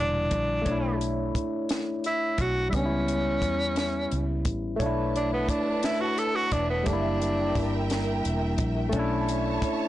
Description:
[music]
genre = slow six-eight R&B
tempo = 58 BPM (dotted quarters)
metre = 6/8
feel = straight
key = B minor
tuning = A4 = 441 Hz
[part]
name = breathy tenor saxophone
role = melody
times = 0.0-7.9 s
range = B3 to A4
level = -28 LUFS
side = right 1 dB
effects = slapback echo
[part]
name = barky tine electric piano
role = accompaniment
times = 0.0-9.9 s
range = A#2 to C#5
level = -29 LUFS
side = left 2 dB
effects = phaser
[part]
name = vintage muted fingered electric bass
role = bass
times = 0.0-9.7 s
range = E1 to E2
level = -30 LUFS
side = equal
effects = tube saturation
[part]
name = compact cocktail drum kit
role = drums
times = 0.3-9.8 s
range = hi-hat, kick drum, snare drum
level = -31 LUFS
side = equal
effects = none
[part]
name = warm studio string section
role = sustained chords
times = 4.8-9.9 s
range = A#4 to A5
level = -34 LUFS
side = right 3 dB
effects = none
[sound]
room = light reverb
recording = blown-out, overdriven recording, overdrive, nothing above 10.4 kHz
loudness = -24 LUFS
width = side -14 dB against mid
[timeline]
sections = 0.0-9.9 A section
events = tenor saxophone solo 0.0-9.9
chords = 0.0 F#7b9b13 (rootless); 0.7 Bm11; 2.7 C#m7b5; 4.8 Bm11; 6.9 F#7b9b13; 8.9 Bm11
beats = | 0.66 1.70 | 2.73 3.77 | 4.80 5.83 | 6.87 7.90 | 8.94

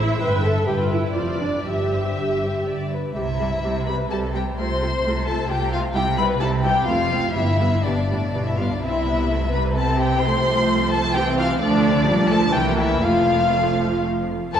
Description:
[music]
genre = quick classical-period movement for string orchestra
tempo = 110-134 BPM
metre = 3/4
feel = rubato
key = C major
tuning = A4 = 438 Hz
[part]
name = dark chamber violin section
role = melody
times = 0.0-14.6 s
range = B4 to C6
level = -24 LUFS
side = left 3 dB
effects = none
[part]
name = dark chamber violin section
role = second line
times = 0.0-14.6 s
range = D4 to E5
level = -26 LUFS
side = left 2 dB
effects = none
[part]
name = warm chamber viola section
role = accompaniment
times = 0.0-14.6 s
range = E3 to C5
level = -23 LUFS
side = right 1 dB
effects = none
[part]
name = dark chamber double bass section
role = bass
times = 0.0-14.6 s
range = F1 to D2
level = -26 LUFS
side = right 1 dB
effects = none
[part]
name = warm chamber cello section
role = bass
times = 0.0-14.6 s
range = F2 to D3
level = -28 LUFS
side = right 1 dB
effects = none
[sound]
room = wet church reverb, RT60 3.3 s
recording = recorded in a church or concert hall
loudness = -18 LUFS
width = side -9 dB against mid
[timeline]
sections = 0.0-3.2 A section; 3.2-14.5 B section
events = none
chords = 0.2 Em/G; 1.1 Dm7/F; 1.7 C/G; 3.2 C; 4.6 F/C; 5.9 C; 6.9 F; 7.4 G; 8.8 C; 10.2 F/C; 11.6 Dm; 12.1 Gm7/Bb; 12.5 C7; 13.0 F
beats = | 0.21 0.68 1.15 | 1.68 2.19 2.69 | 3.17 3.64 4.10 | 4.58 5.04 5.50 | 5.95 6.41 6.88 | 7.36 7.85 8.34 | 8.82 9.29 9.76 | 10.24 10.70 11.15 | 11.61 12.07 12.55 | 13.04 13.54 14.04 | 14.54

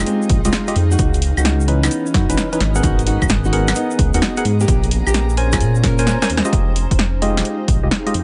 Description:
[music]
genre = UK garage, two-step garage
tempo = 130 BPM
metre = 4/4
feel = swing 66% on 16ths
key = F minor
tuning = A4 = 440 Hz
[part]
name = percussive organ stab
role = stabs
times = 0.0-8.1 s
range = Fb3 to Ab5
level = -25 LUFS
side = equal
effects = chorus, digital delay
[part]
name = dark detuned saw bass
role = bass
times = 0.0-8.2 s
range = F1 to Bb2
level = -20 LUFS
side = equal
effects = none
[part]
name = granular cloud pad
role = texture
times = 0.0-8.2 s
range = Fb3 to Cb6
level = -30 LUFS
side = equal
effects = built-in reverb, sidechain pumping
[part]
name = nylon-string guitar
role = melody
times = 0.1-6.1 s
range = Ab3 to Bb4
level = -26 LUFS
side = equal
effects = vintage 12-bit sampler grit, digital delay
[part]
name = house drum kit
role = drums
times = 0.1-8.2 s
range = claves, hi-hat, snare drum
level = -23 LUFS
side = equal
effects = small room ambience
[part]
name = egg shaker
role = percussion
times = 0.1-6.5 s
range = none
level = -34 LUFS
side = equal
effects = none
[part]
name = electronic kick drum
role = drums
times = 0.3-7.8 s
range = none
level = -22 LUFS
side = equal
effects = small room ambience
[sound]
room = little or no reverb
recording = nothing above 10.3 kHz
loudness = -17 LUFS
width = mono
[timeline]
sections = 0.0-6.5 A section; 6.5-8.2 B section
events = drop 0.0-6.5; kick drops out 6.1-6.5; drum fill 6.1-6.5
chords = 0.0 Fm9; 1.0 Dbm9; 2.8 Abm9; 4.7 Bbm9; 6.5 Fm9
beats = 0.07 0.53 | 0.99 1.45 1.91 2.37 | 2.84 3.30 3.76 4.22 | 4.68 5.14 5.61 6.07 | 6.53 6.99 7.45 7.91

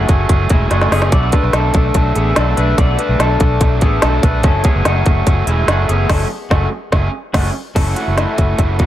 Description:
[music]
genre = jangly indie pop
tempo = 145 BPM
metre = 4/4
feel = straight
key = F# minor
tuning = A4 = 438 Hz
[part]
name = raw garage guitar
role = accompaniment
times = 0.0-8.9 s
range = F#2 to A4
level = -20 LUFS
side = right 4 dB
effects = overdrive
[part]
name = electric guitar through a small old amp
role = arpeggios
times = 0.0-8.9 s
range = F#3 to D5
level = -20 LUFS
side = left 4 dB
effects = wide subtle chorus, tape echo
[part]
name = vintage muted fingered electric bass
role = bass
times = 0.0-8.9 s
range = E1 to B1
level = -17 LUFS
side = equal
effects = none
[part]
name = organic electronic drum kit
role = drums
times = 0.1-8.9 s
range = crash cymbal, hi-hat, kick drum, snare drum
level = -16 LUFS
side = equal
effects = overdrive, tape echo
[sound]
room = little or no reverb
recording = echo-heavy mix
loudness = -12 LUFS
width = side -13 dB against mid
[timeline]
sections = 0.0-7.8 A section; 7.8-8.9 B section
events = drum fill 0.7-1.1; band accent 6.1-7.8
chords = 0.0 F#madd9; 1.1 Bm7; 4.4 F#madd9; 7.8 F#m7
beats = 0.29 0.71 | 1.12 1.54 1.95 2.37 | 2.78 3.19 3.61 4.03 | 4.44 4.86 5.27 5.68 | 6.10 6.51 6.93 7.34 | 7.76 8.17 8.59

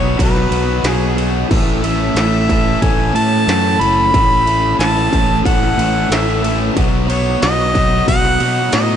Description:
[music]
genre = classic rock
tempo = 91 BPM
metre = 4/4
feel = straight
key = unclear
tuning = A4 = 440 Hz
[part]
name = warm harmonica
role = melody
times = 0.0-9.0 s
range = G#4 to B5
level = -18 LUFS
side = equal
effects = none
[part]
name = distorted electric guitar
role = riff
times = 0.0-9.0 s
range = A2 to A4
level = -17 LUFS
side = equal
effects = distortion, slapback echo
[part]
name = growling fingered electric bass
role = bass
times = 0.0-9.0 s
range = F#1 to B2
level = -18 LUFS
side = equal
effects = overdrive
[part]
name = industrial drum kit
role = drums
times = 0.2-8.9 s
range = crash cymbal, kick drum, ride cymbal, snare drum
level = -19 LUFS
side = equal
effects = distortion
[sound]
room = light reverb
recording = nothing above 10.3 kHz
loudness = -12 LUFS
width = side -9 dB against mid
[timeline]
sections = 0.0-9.0 A section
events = none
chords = 0.0 B; 1.5 A; 6.8 B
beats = 0.18 0.84 | 1.50 2.16 2.81 3.47 | 4.13 4.79 5.45 6.10 | 6.76 7.42 8.07 8.73

